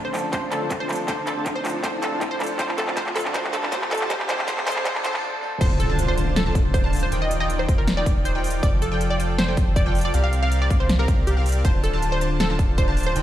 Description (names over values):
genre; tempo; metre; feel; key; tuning
future bass; 159 BPM; 4/4; half-time; D phrygian; A4 = 440 Hz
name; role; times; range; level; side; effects
wide unison pluck; melody; 0.0-13.2 s; G4 to F5; -28 LUFS; right 1 dB; sidechain pumping, ping-pong delay
bright concert grand piano; accompaniment; 0.0-5.6 s; F3 to A4; -32 LUFS; right 2 dB; sidechain pumping, dub echo
soft supersaw; riff; 0.0-13.2 s; D3 to A5; -29 LUFS; equal; sidechain pumping
riser and impact; sound effects; 0.0-7.1 s; none; -31 LUFS; equal; none
big-room dance drum kit; drums; 0.1-13.2 s; crash cymbal, handclaps, hi-hat, snare drum; -27 LUFS; equal; overdrive, studio reverb
electronic kick drum; drums; 0.3-12.9 s; none; -22 LUFS; equal; overdrive, studio reverb
wide unison pluck; arpeggios; 5.6-13.2 s; F5 to A5; -35 LUFS; equal; sidechain pumping, dub echo
saturated sub bass; bass; 5.6-13.2 s; D1 to C2; -24 LUFS; equal; sidechain pumping
room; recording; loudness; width
light reverb, digital ambience; played on a big sound system in a bare room, stone room reverb, high-pass filter; -20 LUFS; side -12 dB against mid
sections
0.0-5.6 A section; 5.6-13.2 B section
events
build-up 0.0-5.6; drum fill 0.0-5.2; riser 0.0-5.2; filter sweep on supersaw synth 0.0-5.6; break 5.2-5.6; drop 5.6-13.2; impact 5.6-7.1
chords
0.0 Dm7; 7.1 Ebmaj7; 8.6 F6; 10.1 C7sus4; 11.6 Dm7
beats
0.33 0.70 | 1.08 1.46 1.84 2.21 | 2.59 2.97 3.35 3.72 | 4.10 4.48 4.86 5.23 | 5.61 5.99 6.37 6.74 | 7.12 7.50 7.88 8.25 | 8.63 9.01 9.38 9.76 | 10.14 10.52 10.89 11.27 | 11.65 12.03 12.40 12.78 | 13.16